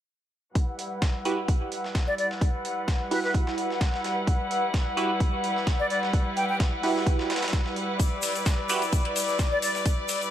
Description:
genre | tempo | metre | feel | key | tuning
bass house | 129 BPM | 4/4 | swing 54% on 16ths | E minor | A4 = 438 Hz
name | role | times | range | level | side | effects
rich chamber string section | sustained chords | 0.6-10.3 s | G3 to F#5 | -29 LUFS | left 1 dB | sidechain pumping, low-pass filter
breakbeat sampler-style drum kit | drums | 0.6-10.2 s | hi-hat, snare drum | -36 LUFS | right 1 dB | sidechain pumping on hats, high-pass filter on hats, high-pass filter on snare
electronic kick drum | drums | 0.6-10.0 s | none | -25 LUFS | equal | none
band-passed chord stab | stabs | 1.3-8.8 s | E4 to B4 | -31 LUFS | right 4 dB | phaser, cassette tape, sidechain pumping, dub echo
breathy silver concert flute | melody | 2.1-6.6, 9.5-9.7 s | B4 to G5 | -30 LUFS | left 1 dB | dub echo
electronic hi-hat | drums | 8.0-10.3 s | none | -35 LUFS | left 4 dB | none
egg shaker | percussion | 8.0-10.3 s | none | -33 LUFS | left 3 dB | none
room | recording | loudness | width
light reverb | none | -24 LUFS | side -11 dB against mid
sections
0.6-10.3 A section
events
filter sweep on synth stab 0.6-10.3; filter sweep on string section 0.6-10.3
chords
0.6 Emadd9

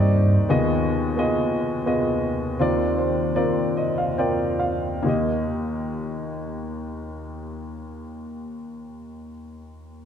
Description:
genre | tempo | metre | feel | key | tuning
folk | 65-90 BPM | 3/4 | straight | Eb major | A4 = 442 Hz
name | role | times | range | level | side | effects
warm upright piano | accompaniment | 0.0-10.1 s | Eb2 to G5 | -23 LUFS | left 1 dB | none
room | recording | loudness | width
moderate concert hall reverb, RT60 1.9 s | none | -21 LUFS | side -8 dB against mid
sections
0.0-5.1 A section; 5.1-10.1 B section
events
slowing down 0.5-5.1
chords
0.0 Cmadd9/Eb; 0.5 Abm6/Eb; 2.6 Bbadd9/Eb; 5.1 Eb

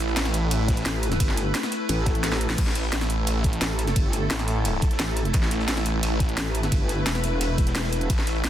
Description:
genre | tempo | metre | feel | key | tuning
dark technical drum and bass | 174 BPM | 4/4 | straight | unclear | A4 = 441 Hz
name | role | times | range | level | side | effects
swarming drone | sustained chords | 0.0-8.5 s | A3 to B4 | -29 LUFS | equal | built-in reverb, sidechain pumping
snarling distorted saw bass | bass | 0.0-8.5 s | A1 | -26 LUFS | equal | distortion, tube saturation, sidechain pumping
drum and bass drum kit | drums | 0.0-8.5 s | crash cymbal, hi-hat, ride cymbal, snare drum | -28 LUFS | equal | overdrive
crunchy breakbeat drum kit | drums | 0.1-8.5 s | hi-hat, snare drum | -40 LUFS | equal | none
electronic kick drum | drums | 0.7-8.2 s | none | -23 LUFS | equal | overdrive
metallic wobble bass | bass | 0.9-8.1 s | E1 to A1 | -26 LUFS | equal | chorus
swell | sound effects | 2.0-2.6 s | none | -35 LUFS | left 4 dB | none
room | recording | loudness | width
little or no reverb | dense, heavily limited modern master | -22 LUFS | side -11 dB against mid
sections
0.0-8.5 A section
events
swell 2.0-2.6; drum fill 2.2-2.6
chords
0.0 A5

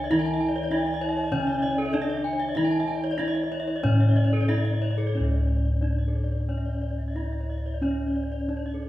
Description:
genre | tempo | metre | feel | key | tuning
Balinese gamelan | 90-101 BPM | 4/4 | straight | C# pelog | A4 = 441 Hz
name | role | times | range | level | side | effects
gamelan-type bronze metallophone | melody | 0.0-8.9 s | C#4 to E4-50c | -29 LUFS | equal | none
gamelan-type bronze metallophone | accompaniment | 0.0-5.2 s | C#3 to E3-50c | -34 LUFS | right 1 dB | none
gamelan-type bronze metallophone | arpeggios | 0.0-8.8 s | A4-40c to A5-40c | -34 LUFS | left 3 dB | none
gamelan-type bronze metallophone | arpeggios | 0.0-8.9 s | A4-40c to G#5-45c | -35 LUFS | right 2 dB | none
gamelan-type bossed gongs | bass | 0.0-8.9 s | C#2 to E4-50c | -26 LUFS | equal | none
breathy bright low xiao | second line | 0.7-4.6 s | A4-38c to A5-38c | -34 LUFS | left 1 dB | none
room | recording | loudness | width
wet recital hall reverb, RT60 1.4 s | heard from further back in the room, small room ambience | -23 LUFS | side -14 dB against mid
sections
0.0-5.1 A section; 5.1-8.9 B section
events
none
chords
none

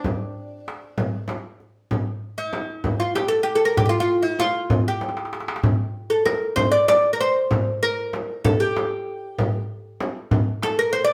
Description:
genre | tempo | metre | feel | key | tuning
Arabic maqam ensemble | 64 BPM (dotted quarters) | 6/8 | straight | D maqam bayati | A4 = 440 Hz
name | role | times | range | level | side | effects
oud | melody | 0.0-11.1 s | D4 to D5 | -23 LUFS | equal | none
frame drum | percussion | 0.0-10.8 s | none | -28 LUFS | equal | none
darbuka | percussion | 0.1-11.0 s | none | -28 LUFS | equal | none
room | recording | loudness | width
wet studio reverb, RT60 0.7 s | band playing live in one room | -22 LUFS | mono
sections
0.0-11.1 A section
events
drum fill 5.0-5.6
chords
none

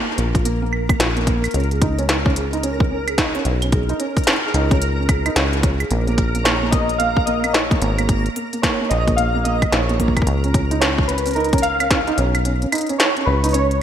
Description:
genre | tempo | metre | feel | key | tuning
IDM | 110 BPM | 4/4 | swing 62% on 16ths | unclear | A4 = 440 Hz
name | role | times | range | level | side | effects
felt-muted upright piano | arpeggios | 0.0-13.7 s | Bb3 to Ab4 | -24 LUFS | right 3 dB | ping-pong delay
backwards swelling texture | texture | 0.1-13.8 s | Bb4 to Bb5 | -30 LUFS | equal | built-in reverb, ensemble chorus
deep acid bass | bass | 0.2-13.8 s | Ab1 to Db2 | -21 LUFS | equal | none
industrial drum kit | drums | 0.2-13.8 s | claves, hi-hat, snare drum | -22 LUFS | equal | gated reverb, ping-pong delay
electronic kick drum | drums | 0.3-12.0 s | none | -20 LUFS | equal | none
warbly lo-fi synth keys | melody | 6.4-13.8 s | Bb4 to F5 | -22 LUFS | equal | chorus, digital delay
room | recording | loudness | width
moderate lush hall reverb, RT60 1.9 s, digital ambience | bright 1980s-style digital production | -16 LUFS | side -9 dB against mid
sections
0.0-13.8 A section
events
kick drops out 12.5-13.8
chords
0.0 Bb5; 1.5 Dbsus2; 5.9 Absus4 (rootless); 10.3 Db9

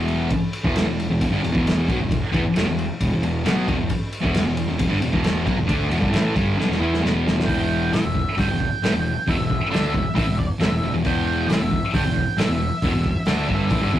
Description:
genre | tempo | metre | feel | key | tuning
garage rock duo or trio | 134 BPM | 4/4 | straight | E minor | A4 = 440 Hz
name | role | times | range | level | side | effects
thick fuzz guitar | riff | 0.0-14.0 s | E2 to E4 | -22 LUFS | equal | distortion
fuzz picked electric bass | bass | 0.0-14.0 s | E1 to E2 | -26 LUFS | equal | overdrive
vintage drum kit | drums | 0.1-14.0 s | hi-hat, kick drum, ride cymbal, snare drum | -23 LUFS | equal | none
octave-fuzz lead guitar | melody | 7.5-14.0 s | D5 to G5 | -28 LUFS | right 2 dB | distortion
room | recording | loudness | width
light reverb | rough rehearsal-room recording, tube saturation | -19 LUFS | side -12 dB against mid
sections
0.0-7.5 A section; 7.5-14.0 B section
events
drum fill 6.6-7.5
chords
0.0 Em

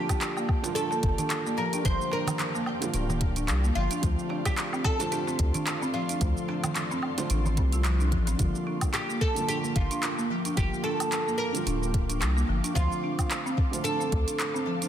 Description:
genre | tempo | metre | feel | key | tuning
organic downtempo | 110 BPM | 4/4 | swing 56% on 16ths | G minor | A4 = 440 Hz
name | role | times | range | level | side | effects
oud | melody | 0.0-14.9 s | F4 to C5 | -32 LUFS | right 1 dB | digital delay
felt-muted upright piano | accompaniment | 0.0-14.9 s | D3 to G4 | -35 LUFS | right 4 dB | sidechain pumping, tape echo
ethereal airy pad | sustained chords | 0.0-14.9 s | Bb3 to D6 | -39 LUFS | left 2 dB | ensemble chorus, built-in reverb, sidechain pumping
folk marimba with medium mallets | arpeggios | 0.0-14.9 s | F3 to F4 | -33 LUFS | left 1 dB | tape echo
bronze singing bowl | texture | 0.0-8.4 s | A5 | -43 LUFS | right 8 dB | none
electronic kick drum | drums | 0.1-14.2 s | none | -28 LUFS | equal | none
organic electronic drum kit | drums | 0.1-14.9 s | handclaps, hi-hat, shaker, woodblock | -33 LUFS | right 1 dB | none
darbuka | percussion | 0.1-8.4 s | none | -38 LUFS | right 3 dB | none
round analog bass | bass | 1.0-14.2 s | D1 to D2 | -27 LUFS | equal | none
room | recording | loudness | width
moderate lush hall reverb, RT60 1.9 s, studio reverb | dense, heavily limited modern master | -25 LUFS | side -10 dB against mid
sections
0.0-8.4 A section; 8.4-14.9 A section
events
none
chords
0.0 Gm7; 4.0 Dm7; 8.4 Gm7; 12.8 Dm7

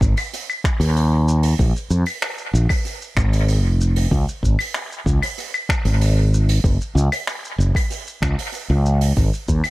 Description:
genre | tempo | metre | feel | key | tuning
sunset chillout | 95 BPM | 4/4 | straight | unclear | A4 = 441 Hz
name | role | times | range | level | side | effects
fretless electric bass | bass | 0.0-9.6 s | F1 to F2 | -16 LUFS | equal | none
electronic kick drum | drums | 0.0-9.6 s | none | -21 LUFS | equal | overdrive
vintage brush drum kit | drums | 0.0-9.7 s | claves, finger snaps, hi-hat, shaker | -26 LUFS | equal | dub echo
room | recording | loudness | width
little or no reverb | echo-heavy mix | -17 LUFS | side -20 dB against mid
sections
0.0-9.7 A section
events
none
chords
none

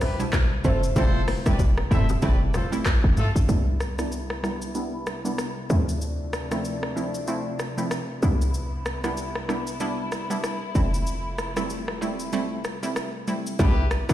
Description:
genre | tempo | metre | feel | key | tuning
afrobeats | 95 BPM | 4/4 | swing 58% on 16ths | C major | A4 = 440 Hz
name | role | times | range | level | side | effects
marimba with medium mallets | melody | 0.0-2.8 s | C5 | -33 LUFS | equal | ping-pong delay
warm horn section | second line | 0.0-3.3, 13.6-14.1 s | A3 to E5 | -33 LUFS | left 1 dB | none
analog pluck | accompaniment | 0.0-14.1 s | B2 to E4 | -29 LUFS | right 1 dB | chorus, low-pass filter
short 808-style bass | bass | 0.0-14.1 s | E1 to D2 | -24 LUFS | equal | none
afro-pop drum kit | drums | 0.0-14.1 s | handclaps, hi-hat, kick drum, rim click, shaker, toms | -27 LUFS | equal | none
bongos and congas | percussion | 0.0-3.3 s | none | -32 LUFS | left 2 dB | none
warm studio string section | sustained chords | 3.5-13.6 s | C3 to E4 | -34 LUFS | left 1 dB | low-pass filter
room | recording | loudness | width
small room ambience | played on a big sound system in a bare room, stone room reverb | -22 LUFS | side -13 dB against mid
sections
0.0-3.5 A section; 3.5-13.6 B section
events
filter sweep 3.5-13.6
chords
0.0 Cmaj7; 0.6 Fmaj7; 3.5 Cmaj7; 5.7 Dm7; 8.2 Cmaj7; 10.8 Fmaj7; 13.6 Cmaj7

